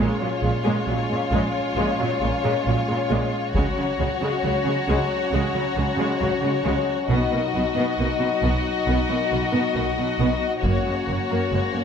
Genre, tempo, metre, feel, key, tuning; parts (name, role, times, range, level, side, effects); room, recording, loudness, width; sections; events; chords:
cinematic, epic orchestral film score; 68 BPM; 4/4; straight; Db mixolydian; A4 = 442 Hz
rich chamber violin section; melody; 0.0-11.8 s; Db5 to Eb5; -28 LUFS; left 8 dB
warm symphonic violin section; second line; 0.0-11.8 s; F4 to Gb4; -27 LUFS; left 2 dB
rich symphonic viola section; accompaniment; 0.0-11.8 s; Gb3 to Cb4; -29 LUFS; right 1 dB
mellow French horn section; sustained chords; 0.0-11.8 s; Gb3 to Eb4; -29 LUFS; left 4 dB
rich studio double bass section; bass; 0.0-11.6 s; Gb1 to Db2; -27 LUFS; right 3 dB
rich symphonic cello section; bass; 0.0-11.8 s; Gb2 to Db3; -27 LUFS; right 3 dB
taiko ensemble; drums; 3.5-5.3, 10.6-11.8 s; -27 LUFS; equal
moderate scoring stage reverb, RT60 1.6 s; -20 LUFS; side -7 dB against mid
0.0-11.8 A section
build-up 0.0-11.8
0.0 Bbm7; 3.5 Dbsus4; 7.1 Cb; 10.6 Gb